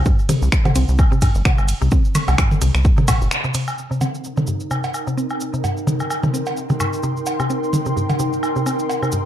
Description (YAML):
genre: minimal techno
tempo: 129 BPM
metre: 4/4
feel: swing 56% on 16ths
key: C minor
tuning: A4 = 440 Hz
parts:
  - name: rubbery square bass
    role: bass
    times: 0.0-3.3 s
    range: G1 to C2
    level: -17 LUFS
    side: equal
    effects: sidechain pumping
  - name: mallet-like synth pluck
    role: riff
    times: 0.1-9.2 s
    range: G2 to C4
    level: -23 LUFS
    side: equal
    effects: chorus, sidechain pumping, digital delay
  - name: electronic kick drum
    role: drums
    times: 0.1-3.2 s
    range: none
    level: -16 LUFS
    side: equal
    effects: none
  - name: cabasa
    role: percussion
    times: 0.1-9.2 s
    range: none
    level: -34 LUFS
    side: right 2 dB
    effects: none
  - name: house drum kit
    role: drums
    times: 0.3-3.7 s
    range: finger snaps, hi-hat, ride cymbal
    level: -24 LUFS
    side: right 1 dB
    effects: low-pass filter on hats, low-pass filter on cymbals, low-pass filter on snare
  - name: electronic toms, cowbell and woodblock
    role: percussion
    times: 0.3-9.1 s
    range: none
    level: -23 LUFS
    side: equal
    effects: none
  - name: ethereal airy pad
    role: texture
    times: 4.4-9.3 s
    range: Eb4 to C6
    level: -24 LUFS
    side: equal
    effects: ensemble chorus, built-in reverb, tremolo, sidechain pumping
room: light reverb, digital ambience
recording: dark, warm production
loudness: -16 LUFS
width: side -11 dB against mid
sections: 0.0-3.8 A section; 3.8-9.3 B section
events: drop 0.0-3.8; break 3.3-3.8; band accent 3.3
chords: 0.0 C5; 3.8 Cm7